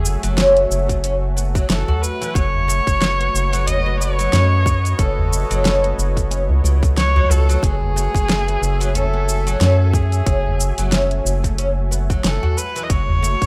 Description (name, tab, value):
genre	organic downtempo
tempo	91 BPM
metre	4/4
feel	swing 57% on 16ths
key	F# dorian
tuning	A4 = 439 Hz
part	clear kamancheh	melody	0.0-13.5 s	G#4 to D#5	-26 LUFS	equal	delay
part	warm analog pad	sustained chords	0.0-13.5 s	F#3 to G#5	-32 LUFS	equal	chorus, vintage 12-bit sampler grit, sidechain pumping
part	round analog bass	bass	0.0-13.5 s	F#1 to F#2	-21 LUFS	equal	sidechain pumping
part	deep house drum kit	drums	0.1-13.5 s	hi-hat, shaker, snare drum	-24 LUFS	equal	overdrive
part	oud	arpeggios	0.2-13.3 s	C#3 to F#4	-25 LUFS	equal	digital delay
part	electronic kick drum	drums	0.9-13.5 s	none	-21 LUFS	equal	none
part	udu	percussion	1.9-13.2 s	none	-24 LUFS	equal	none
room	digital ambience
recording	rough home demo mix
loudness	-18 LUFS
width	mono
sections	0.0-13.5 A section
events	none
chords	0.0 F#m9; 2.4 B9/F#; 7.6 F#m9; 12.9 B7sus2/F# (rootless)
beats	0.38 1.03 1.69 | 2.35 3.01 3.67 4.33 | 4.99 5.65 6.31 6.97 | 7.63 8.29 8.95 9.61 | 10.27 10.93 11.58 12.24 | 12.90